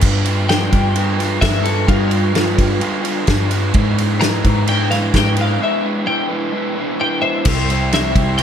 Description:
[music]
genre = indie rock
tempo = 129 BPM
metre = 4/4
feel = straight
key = unclear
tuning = A4 = 441 Hz
[part]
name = raw garage guitar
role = riff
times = 0.0-8.4 s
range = C3 to C5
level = -20 LUFS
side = right 1 dB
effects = overdrive
[part]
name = picked electric bass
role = bass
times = 0.0-8.4 s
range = C2 to G#2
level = -18 LUFS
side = equal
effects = none
[part]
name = loose indie drum kit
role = drums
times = 0.0-8.4 s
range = crash cymbal, kick drum, ride cymbal, snare drum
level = -19 LUFS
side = equal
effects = none
[part]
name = twelve-string electric guitar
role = melody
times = 0.5-8.4 s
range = F4 to Bb5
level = -21 LUFS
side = left 3 dB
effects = analog chorus
[sound]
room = little or no reverb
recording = none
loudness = -14 LUFS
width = side -8 dB against mid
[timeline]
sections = 0.0-7.5 A section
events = clean electric guitar solo 0.0-7.5; break 5.6-7.5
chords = 0.0 G7; 3.7 E7/G#; 7.5 C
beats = | 0.03 0.50 0.96 1.43 | 1.89 2.35 2.82 3.28 | 3.75 4.21 4.68 5.14 | 5.61 6.07 6.54 7.00 | 7.47 7.93 8.40

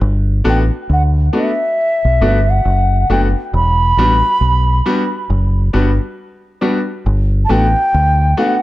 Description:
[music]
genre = lovers rock reggae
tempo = 68 BPM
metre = 4/4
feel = swing 62% on 16ths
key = G major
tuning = A4 = 441 Hz
[part]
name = deep dub fingered electric bass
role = bass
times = 0.0-8.3 s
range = E1 to D2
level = -13 LUFS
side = equal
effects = none
[part]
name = warm concert grand piano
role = accompaniment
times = 0.4-8.5 s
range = G3 to F#4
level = -18 LUFS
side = left 2 dB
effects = none
[part]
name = mellow bansuri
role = melody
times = 0.5-8.6 s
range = E5 to B5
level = -16 LUFS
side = right 1 dB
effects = tape echo
[sound]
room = light reverb, small room ambience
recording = dark, warm production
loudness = -12 LUFS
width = side -16 dB against mid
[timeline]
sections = 0.0-8.6 A section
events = none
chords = 0.0 Gmaj9; 3.5 Em9; 7.1 Gmaj9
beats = | 0.01 0.89 1.77 2.65 | 3.53 4.41 5.29 6.17 | 7.05 7.93

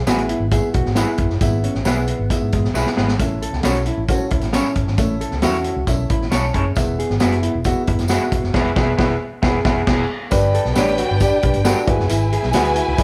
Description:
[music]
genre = uptempo 1960s-style soul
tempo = 135 BPM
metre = 4/4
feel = straight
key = unclear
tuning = A4 = 441 Hz
[part]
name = vintage muted fingered electric bass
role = bass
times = 0.0-13.0 s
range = E1 to G#2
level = -24 LUFS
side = equal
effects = none
[part]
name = dark upright piano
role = accompaniment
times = 0.1-13.0 s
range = B3 to B5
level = -25 LUFS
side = equal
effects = none
[part]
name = mellow electric guitar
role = riff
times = 0.1-13.0 s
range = G#3 to A4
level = -27 LUFS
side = equal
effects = none
[part]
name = electric guitar through a small old amp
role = stabs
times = 0.1-12.7 s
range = B3 to C#5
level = -28 LUFS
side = equal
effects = none
[part]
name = vintage drum kit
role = drums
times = 0.1-13.0 s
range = crash cymbal, hi-hat, kick drum, snare drum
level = -23 LUFS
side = equal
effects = none
[part]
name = tambourine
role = percussion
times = 0.1-13.0 s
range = none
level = -38 LUFS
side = equal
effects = none
[part]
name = warm studio violin section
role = second line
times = 10.3-13.0 s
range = D4 to G#5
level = -25 LUFS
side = equal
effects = none
[sound]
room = light reverb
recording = band playing live in one room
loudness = -19 LUFS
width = mono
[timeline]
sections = 0.0-10.3 A section; 10.3-13.0 B section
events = drum fill 2.8-3.2; band accent 8.5-10.3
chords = 0.0 E; 3.2 A; 6.8 E; 10.3 G; 11.9 E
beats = 0.07 0.52 0.97 | 1.41 1.86 2.31 2.75 | 3.20 3.64 4.09 4.54 | 4.98 5.43 5.87 6.32 | 6.76 7.21 7.65 8.10 | 8.54 8.99 9.43 9.88 | 10.32 10.77 11.21 11.65 | 12.10 12.54 12.99

